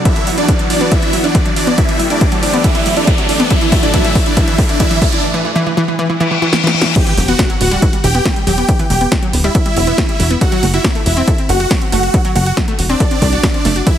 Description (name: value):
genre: uplifting trance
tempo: 139 BPM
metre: 4/4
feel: straight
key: E minor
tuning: A4 = 440 Hz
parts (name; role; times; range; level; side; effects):
- lush unison pad; sustained chords; 0.0-5.2 s; A2 to A4; -22 LUFS; equal; chorus, sidechain pumping
- riser, reverse cymbal and impact; sound effects; 0.0-8.7 s; none; -21 LUFS; left 2 dB; none
- supersaw chords; melody; 0.1-14.0 s; D4 to G5; -17 LUFS; right 1 dB; phaser, sidechain pumping, ping-pong delay
- analog pluck; arpeggios; 0.1-13.9 s; E3 to A4; -19 LUFS; equal; chorus, sidechain pumping, ping-pong delay
- electronic kick drum; drums; 0.1-14.0 s; none; -14 LUFS; equal; none
- punchy analog drum machine; drums; 0.1-14.0 s; crash cymbal, hi-hat, snare drum; -20 LUFS; equal; none
- plucky analog bass; bass; 7.2-13.8 s; D1 to C2; -16 LUFS; equal; sidechain pumping
room: light reverb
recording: heavily compressed radio sound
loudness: -11 LUFS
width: side -10 dB against mid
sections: 0.0-7.0 A section; 7.0-14.0 B section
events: build-up 0.0-7.0; riser 0.0-5.2; filter sweep on synth arpeggio sound 0.0-7.0; drum fill 0.1-5.2, 6.5-7.0; reverse cymbal 6.2-7.0; drop 7.0-14.0; impact 7.0-8.7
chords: 0.1 Bsus4; 1.8 Am7; 3.5 D/A; 5.2 N.C.; 7.0 Emadd9; 10.4 F#dim